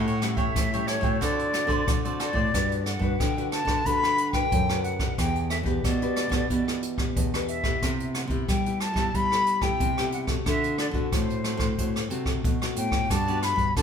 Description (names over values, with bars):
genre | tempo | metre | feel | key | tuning
samba and choro | 91 BPM | 4/4 | straight | G major | A4 = 439 Hz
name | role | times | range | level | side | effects
concert flute | melody | 0.0-13.8 s | C5 to B5 | -28 LUFS | left 2 dB | none
cavaquinho | accompaniment | 0.0-2.5, 13.1-13.8 s | E4 to G5 | -33 LUFS | right 5 dB | none
nylon-string guitar | accompaniment | 0.0-13.8 s | A2 to B4 | -33 LUFS | left 4 dB | none
nylon-string guitar | bass | 0.0-13.8 s | E2 to G3 | -29 LUFS | right 1 dB | none
jazz brush drum kit | drums | 0.1-13.8 s | hi-hat, kick drum, rim click | -28 LUFS | equal | none
room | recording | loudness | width
moderate large studio reverb, RT60 1.2 s | band playing live in one room | -23 LUFS | side -7 dB against mid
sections
0.0-2.5 A section; 2.5-13.8 B section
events
none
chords
0.0 A7; 1.2 D7; 2.5 Gmaj7; 5.2 Em7; 7.8 Cmaj7; 10.5 D7; 13.1 Gmaj7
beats
0.56 1.22 1.88 | 2.54 3.20 3.86 4.52 | 5.18 5.84 6.50 7.17 | 7.83 8.49 9.15 9.81 | 10.47 11.13 11.79 12.45 | 13.11 13.77